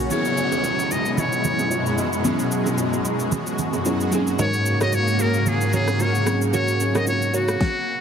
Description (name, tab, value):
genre	amapiano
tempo	112 BPM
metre	4/4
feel	swing 55% on 16ths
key	F# mixolydian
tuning	A4 = 440 Hz
part	glassy digital keys	accompaniment	0.0-7.6 s	F#3 to A#4	-27 LUFS	equal	chorus
part	granular cloud pad	sustained chords	0.0-7.6 s	F#2 to F#4	-25 LUFS	equal	built-in reverb, sidechain pumping
part	glassy wavetable pluck	stabs	0.0-0.1, 4.4-7.5 s	F#4 to C#5	-28 LUFS	right 2 dB	chorus, ping-pong delay
part	trumpet with metal mute	melody	0.1-8.0 s	F#4 to D#5	-25 LUFS	left 1 dB	ping-pong delay
part	smooth R&B drum kit	drums	0.1-7.7 s	kick drum, rim click, shaker, snare drum	-28 LUFS	equal	overdrive
part	congas and bongos	percussion	0.1-7.2 s	none	-29 LUFS	right 5 dB	none
part	downlifter	sound effects	0.1-4.4 s	none	-31 LUFS	equal	none
part	plucky analog bass	bass	4.4-7.6 s	G#2	-23 LUFS	left 1 dB	none
room	light reverb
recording	heavily compressed radio sound, multiband compression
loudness	-19 LUFS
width	side -7 dB against mid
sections	0.1-8.0 A section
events	none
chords	0.1 F#9sus4; 4.1 G#9sus4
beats	| 0.11 0.64 1.18 1.71 | 2.25 2.78 3.32 3.86 | 4.39 4.93 5.46 6.00 | 6.53 7.07 7.61